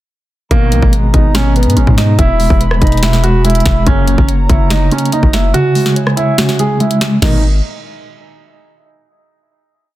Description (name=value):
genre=hip hop, trap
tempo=143 BPM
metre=4/4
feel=half-time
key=G# minor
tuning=A4 = 440 Hz
part: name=dark baby grand piano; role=melody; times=0.5-7.4 s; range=A#3 to G#4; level=-17 LUFS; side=right 2 dB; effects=low-pass filter
part: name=mellow electric guitar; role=accompaniment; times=0.5-7.4 s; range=B2 to C#5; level=-16 LUFS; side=right 1 dB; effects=tremolo, low-pass filter
part: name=mellow brass ensemble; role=sustained chords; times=0.5-7.4 s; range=G#3 to B5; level=-26 LUFS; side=equal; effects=none
part: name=mellow synth brass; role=stabs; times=0.5-0.8, 3.9-4.2, 7.2-7.4 s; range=B1 to D#3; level=-23 LUFS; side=left 2 dB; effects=chorus
part: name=long sustained 808-style bass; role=bass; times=0.5-7.6 s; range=D#1 to G#2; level=-13 LUFS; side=equal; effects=none
part: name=trap drum kit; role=drums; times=0.5-7.3 s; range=crash cymbal, finger snaps, hi-hat, kick drum, rim click, snare drum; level=-14 LUFS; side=equal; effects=soft clipping on snare
room=little or no reverb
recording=dense, heavily limited modern master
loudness=-9 LUFS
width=side -15 dB against mid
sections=0.5-7.2 hook; 7.2-8.9 final chord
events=kick muted 5.5-7.2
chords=0.5 G#madd9; 2.2 E; 3.9 F#; 5.5 C#m; 7.2 G#madd9